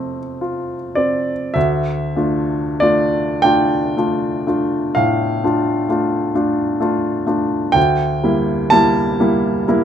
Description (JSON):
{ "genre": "classical, romantic nocturne for solo piano", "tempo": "30-44 BPM (dotted quarters)", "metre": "12/8", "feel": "rubato", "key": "D minor", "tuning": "A4 = 442 Hz", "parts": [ { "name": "clear baby grand piano", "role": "solo", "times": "0.0-9.8 s", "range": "D2 to A5", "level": "-15 LUFS", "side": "equal", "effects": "none" } ], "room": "light reverb", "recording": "close, detailed microphones", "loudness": "-15 LUFS", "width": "side -9 dB against mid", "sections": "0.0-1.6 A section; 1.6-9.8 B section", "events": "none", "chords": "0.0 F; 1.6 Dm; 7.8 Em7b5/D" }